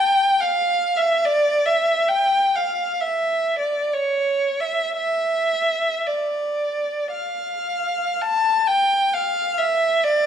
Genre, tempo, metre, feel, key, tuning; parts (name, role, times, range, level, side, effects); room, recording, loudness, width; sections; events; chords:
classical, free, expressive piece for unaccompanied violin; 48-72 BPM; 3/4; rubato; A4 = 441 Hz
rich violin; solo; 0.0-10.3 s; C#5 to A5; -18 LUFS; equal
moderate recital hall reverb, RT60 1.5 s; dark, warm production; -18 LUFS; side -8 dB against mid
0.0-8.2 A section; 8.2-10.3 B section